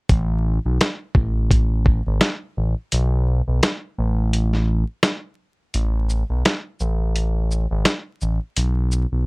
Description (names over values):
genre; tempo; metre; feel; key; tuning
hip hop, boom-bap hip-hop; 85 BPM; 4/4; swing 56% on 16ths; unclear; A4 = 440 Hz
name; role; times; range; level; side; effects
smooth gliding synth bass; bass; 0.1-9.3 s; G#1 to B1; -19 LUFS; equal; none
dusty soul sampler-style drum kit; drums; 0.1-9.1 s; hi-hat, kick drum, shaker, snare drum; -18 LUFS; equal; none
room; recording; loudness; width
little or no reverb; dark, warm production, vinyl crackle; -19 LUFS; side -32 dB against mid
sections
0.1-5.7 A section; 5.7-9.3 B section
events
kick muted 2.9-5.7, 5.7-9.3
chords
none